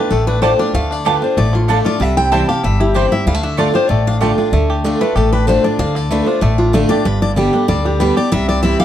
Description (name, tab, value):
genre	bluegrass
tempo	190 BPM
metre	4/4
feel	straight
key	D dorian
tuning	A4 = 442 Hz
part	bluegrass banjo	melody	0.0-8.8 s	D3 to G4	-23 LUFS	equal	plate reverb
part	picked steel-string acoustic guitar	melody	0.0-8.8 s	F4 to A5	-18 LUFS	left 3 dB	plate reverb
part	picked steel-string acoustic guitar	accompaniment	0.0-8.8 s	G2 to G4	-17 LUFS	right 1 dB	none
part	upright bass	bass	0.1-8.7 s	G1 to D2	-18 LUFS	equal	none
part	mandolin	stabs	0.4-4.3 s	A3 to A5	-20 LUFS	right 7 dB	none
room	moderate studio reverb, RT60 0.8 s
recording	dark, warm production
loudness	-12 LUFS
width	side -11 dB against mid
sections	0.0-4.5 A section; 4.5-8.8 A section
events	none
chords	0.0 Dm; 2.0 C; 3.3 Dm; 7.1 G; 8.3 C